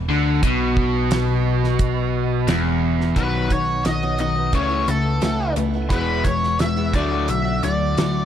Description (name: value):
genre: classic rock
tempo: 88 BPM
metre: 4/4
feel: straight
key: E mixolydian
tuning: A4 = 440 Hz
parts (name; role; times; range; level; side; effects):
- distorted electric guitar; riff; 0.0-3.2 s; E2 to D3; -23 LUFS; right 12 dB; distortion
- overdriven electric guitar; riff; 0.0-8.2 s; E2 to C#4; -23 LUFS; left 8 dB; none
- picked electric bass; bass; 0.0-8.2 s; E1 to D2; -24 LUFS; right 1 dB; none
- damped 70s drum kit; drums; 0.4-8.1 s; hi-hat, kick drum, snare drum; -23 LUFS; right 1 dB; none
- octave-fuzz lead guitar; melody; 3.2-8.2 s; A4 to E5; -23 LUFS; left 1 dB; wah, distortion, slapback echo
- picked steel-string acoustic guitar; accompaniment; 3.2-8.2 s; E2 to F#4; -29 LUFS; right 8 dB; none
room: light reverb, studio ambience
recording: none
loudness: -18 LUFS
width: side -10 dB against mid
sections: 0.0-3.2 A section; 3.2-8.2 B section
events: none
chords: 0.0 E5; 3.2 B; 4.5 Aadd9/C#; 5.9 E; 6.9 D